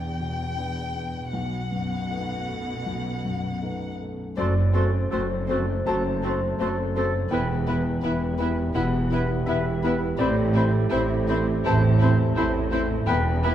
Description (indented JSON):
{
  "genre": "cinematic, emotional film score for orchestra",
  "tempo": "82 BPM",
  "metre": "4/4",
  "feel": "uneven beats, rubato",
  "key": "E minor",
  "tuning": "A4 = 439 Hz",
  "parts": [
    { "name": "rich chamber violin section", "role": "melody", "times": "0.0-13.5 s", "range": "B4 to G5", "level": "-37 LUFS", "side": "left 3 dB", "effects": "none" },
    { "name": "warm grand piano", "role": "accompaniment", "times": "0.0-13.5 s", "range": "B1 to A5", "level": "-28 LUFS", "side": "left 2 dB", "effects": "none" },
    { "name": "warm symphonic cello section", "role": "bass", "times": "0.0-13.5 s", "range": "E2 to B2", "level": "-28 LUFS", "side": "right 1 dB", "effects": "none" },
    { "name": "flute section", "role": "second line", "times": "4.4-13.5 s", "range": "B5 to C6", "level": "-37 LUFS", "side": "left 1 dB", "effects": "none" },
    { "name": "mellow clarinet", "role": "second line", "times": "4.4-13.5 s", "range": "E4 to F#4", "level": "-35 LUFS", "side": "left 2 dB", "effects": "none" },
    { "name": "rich symphonic violin section", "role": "second line", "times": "4.4-13.5 s", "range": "C4 to E4", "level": "-36 LUFS", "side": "left 2 dB", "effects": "none" },
    { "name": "warm oboe", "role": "second line", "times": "4.4-13.5 s", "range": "A4 to C5", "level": "-33 LUFS", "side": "equal", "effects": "none" },
    { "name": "clear symphonic viola section", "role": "accompaniment", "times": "4.4-13.5 s", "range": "A3 to C4", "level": "-33 LUFS", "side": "equal", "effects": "none" },
    { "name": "warm French horn section", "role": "sustained chords", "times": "4.4-13.5 s", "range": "A3 to C5", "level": "-30 LUFS", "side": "equal", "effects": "none" },
    { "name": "rich symphonic double bass section", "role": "bass", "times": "4.4-13.5 s", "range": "E1 to A1", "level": "-27 LUFS", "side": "right 2 dB", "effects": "none" }
  ],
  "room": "moderate scoring stage reverb, RT60 1.6 s",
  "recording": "none",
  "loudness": "-22 LUFS",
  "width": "side -11 dB against mid",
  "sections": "0.0-4.4 A section; 4.4-13.5 B section",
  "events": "none",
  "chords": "0.0 Em7; 1.3 B7; 4.4 F#dim; 7.3 Em; 10.2 Amadd9"
}